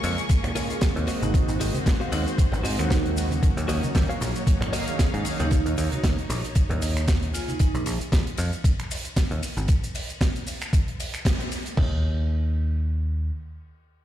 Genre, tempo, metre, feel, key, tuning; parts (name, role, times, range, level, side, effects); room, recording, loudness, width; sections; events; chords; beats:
nu-disco, nu disco; 115 BPM; 4/4; swing 55% on 16ths; Eb dorian; A4 = 440 Hz
mellow synth brass; accompaniment; 0.0-5.5 s; Db3 to F5; -31 LUFS; right 1 dB; chorus, tape echo
dark studio string section; sustained chords; 0.0-7.6 s; Ab3 to Db6; -35 LUFS; left 1 dB; sidechain pumping
direct-recorded clean electric guitar; riff; 0.0-5.4 s; F4 to F5; -35 LUFS; left 3 dB; wide subtle chorus, tape echo
picked electric bass; bass; 0.0-13.3 s; Ab1 to Ab2; -26 LUFS; equal
modern studio drum kit; drums; 0.0-11.8 s; finger snaps, hi-hat, ride cymbal, shaker, snare drum; -31 LUFS; right 1 dB
tube shaker and congas; percussion; 0.0-7.6 s; -35 LUFS; right 2 dB
clean 12-bit digital drum machine; drums; 0.3-11.9 s; crash cymbal, kick drum, toms; -22 LUFS; equal
vibraphone with medium hard mallets; melody; 0.7-7.7 s; C4 to Ab4; -34 LUFS; right 4 dB; tape echo
studio reverb; played on a big sound system in a bare room, large studio reverb; -22 LUFS; side -12 dB against mid
0.0-11.8 A section; 11.8-14.0 B section
drop 0.0-11.8; band accent 11.3
0.0 Bbm7; 1.1 Ab7; 3.4 Ebm7; 7.3 Bbm7; 9.4 N.C.
0.30 0.82 | 1.34 1.86 2.38 2.91 | 3.43 3.95 4.47 4.99 | 5.51 6.04 6.56 7.08 | 7.60 8.12 8.64 9.17 | 9.69 10.21 10.73 11.25 | 11.78 12.30 12.82